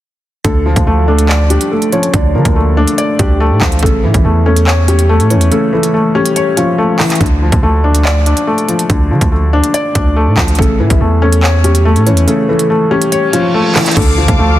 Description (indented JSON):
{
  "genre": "hip hop, drill",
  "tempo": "142 BPM",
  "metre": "4/4",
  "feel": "half-time",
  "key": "D harmonic minor",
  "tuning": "A4 = 440 Hz",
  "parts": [
    { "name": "dark concert grand piano", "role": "melody", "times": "0.4-7.2, 10.6-14.6 s", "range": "E3 to D5", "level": "-15 LUFS", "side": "equal", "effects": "none" },
    { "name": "felt-muted upright piano", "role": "accompaniment", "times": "0.4-14.6 s", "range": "C#3 to D5", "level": "-14 LUFS", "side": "left 2 dB", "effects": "none" },
    { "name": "long sustained 808-style bass", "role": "bass", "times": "0.4-14.6 s", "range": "A1 to D3", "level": "-12 LUFS", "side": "right 1 dB", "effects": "none" },
    { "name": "drill drum kit", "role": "drums", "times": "0.4-14.4 s", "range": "crash cymbal, handclaps, hi-hat, kick drum, rim click", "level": "-15 LUFS", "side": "right 1 dB", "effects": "none" },
    { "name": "reverse cymbal and impact", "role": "sound effects", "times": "13.3-14.6 s", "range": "none", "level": "-19 LUFS", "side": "right 4 dB", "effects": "none" },
    { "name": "muted symphonic string section", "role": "sustained chords", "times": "14.0-14.6 s", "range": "F5 to D6", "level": "-17 LUFS", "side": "left 2 dB", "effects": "none" }
  ],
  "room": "light reverb, studio ambience",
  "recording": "dense, heavily limited modern master",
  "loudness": "-9 LUFS",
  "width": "side -14 dB against mid",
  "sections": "0.4-14.0 A section",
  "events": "kick muted 5.5-7.2, 12.3-14.0; reverse cymbal 13.3-14.0; impact 14.0-14.6",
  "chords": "0.4 Dm; 3.8 A; 7.2 Dm; 10.6 A; 14.0 Dm",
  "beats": "| 0.45 0.87 1.29 1.71 | 2.14 2.56 2.98 3.40 | 3.83 4.25 4.67 5.09 | 5.52 5.94 6.36 6.78 | 7.21 7.63 8.05 8.47 | 8.90 9.32 9.74 10.16 | 10.59 11.01 11.43 11.85 | 12.28 12.70 13.12 13.54 | 13.97 14.39"
}